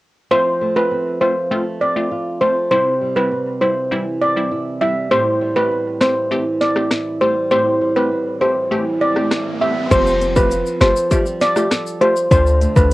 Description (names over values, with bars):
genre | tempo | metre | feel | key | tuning
dancehall | 100 BPM | 4/4 | straight | unclear | A4 = 438 Hz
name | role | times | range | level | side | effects
steel pan | melody | 0.3-12.9 s | B4 to E5 | -17 LUFS | equal | cassette tape
wavetable chord stab | accompaniment | 0.3-12.9 s | G3 to G4 | -22 LUFS | left 1 dB | cassette tape
flamenco guitar | arpeggios | 0.3-12.9 s | A2 to A4 | -24 LUFS | right 2 dB | cassette tape
island pop drum kit | drums | 6.0-12.9 s | crash cymbal, hi-hat, kick drum, rim click, snare drum | -19 LUFS | left 1 dB | overdrive, cassette tape
riser | sound effects | 8.6-9.9 s | none | -29 LUFS | right 1 dB | none
clean 808-style bass | bass | 9.9-12.9 s | F1 to D2 | -17 LUFS | equal | none
tube shaker | percussion | 9.9-12.9 s | none | -35 LUFS | left 7 dB | none
room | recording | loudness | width
little or no reverb | home recording on cassette | -15 LUFS | side -18 dB against mid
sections
0.3-9.9 A section; 9.9-12.9 B section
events
riser 8.6-9.9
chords
0.3 F; 2.7 C; 5.1 Am7; 9.9 Fadd9; 12.3 Dm